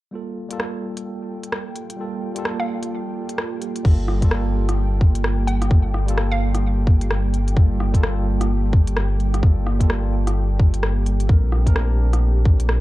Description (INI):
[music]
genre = future garage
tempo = 129 BPM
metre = 4/4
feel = swing 61% on 16ths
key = G minor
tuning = A4 = 440 Hz
[part]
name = tine electric piano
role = accompaniment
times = 0.1-12.8 s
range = G3 to Bb4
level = -30 LUFS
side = right 2 dB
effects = slow stereo tremolo, sidechain pumping, analog delay
[part]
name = ethereal airy pad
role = sustained chords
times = 0.9-12.8 s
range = G3 to G5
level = -29 LUFS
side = right 2 dB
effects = ensemble chorus, built-in reverb, vintage 12-bit sampler grit, sidechain pumping
[part]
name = organic electronic drum kit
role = drums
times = 0.5-12.8 s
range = crash cymbal, hi-hat, rim click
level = -27 LUFS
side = equal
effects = none
[part]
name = hollow square pluck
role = melody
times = 2.6-6.6 s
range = F5 to G5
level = -30 LUFS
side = right 1 dB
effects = chorus, tape echo
[part]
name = soft dub sub bass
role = bass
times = 3.9-12.8 s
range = G1 to Bb1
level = -20 LUFS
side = equal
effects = sidechain pumping
[part]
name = electronic kick drum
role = drums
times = 3.9-12.6 s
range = none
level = -15 LUFS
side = equal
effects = none
[sound]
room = little or no reverb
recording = cassette tape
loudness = -17 LUFS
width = side -17 dB against mid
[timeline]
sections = 0.1-3.9 A section; 3.9-12.8 B section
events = none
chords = 0.1 Gm9; 11.3 Bbmaj9